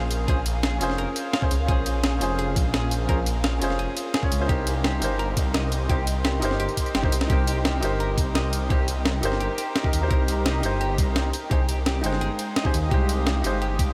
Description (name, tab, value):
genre	liquid drum and bass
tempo	171 BPM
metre	4/4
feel	straight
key	Bb dorian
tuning	A4 = 440 Hz
part	felt-muted upright piano	accompaniment	0.0-13.9 s	Ab3 to G5	-31 LUFS	equal	diffuse ambient delay
part	ethereal airy pad	sustained chords	0.0-13.9 s	Ab3 to Eb6	-37 LUFS	equal	ensemble chorus, built-in reverb, tremolo
part	clean electric guitar	arpeggios	0.0-13.9 s	G4 to F5	-37 LUFS	equal	analog chorus, tape echo
part	swelling detuned saw bass	bass	0.0-13.9 s	F1 to Eb2	-28 LUFS	equal	tube saturation
part	breakbeat sampler-style drum kit	drums	0.1-13.9 s	hi-hat, ride cymbal, snare drum, tambourine	-31 LUFS	equal	none
part	electronic kick drum	drums	0.3-13.9 s	none	-26 LUFS	equal	none
room	moderate huge ambient reverb, RT60 6.4 s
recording	dreamy mix soaked in reverb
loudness	-24 LUFS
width	mono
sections	0.0-13.9 A section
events	drum fill 6.9-7.3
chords	0.0 Bbm7; 4.5 Cm7; 11.3 Fm9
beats	| 0.28 0.63 0.98 1.33 | 1.69 2.04 2.39 2.74 | 3.09 3.44 3.79 4.14 | 4.49 4.84 5.19 5.54 | 5.90 6.25 6.60 6.95 | 7.30 7.65 8.00 8.35 | 8.70 9.05 9.40 9.76 | 10.11 10.46 10.81 11.16 | 11.51 11.86 12.21 12.56 | 12.91 13.26 13.62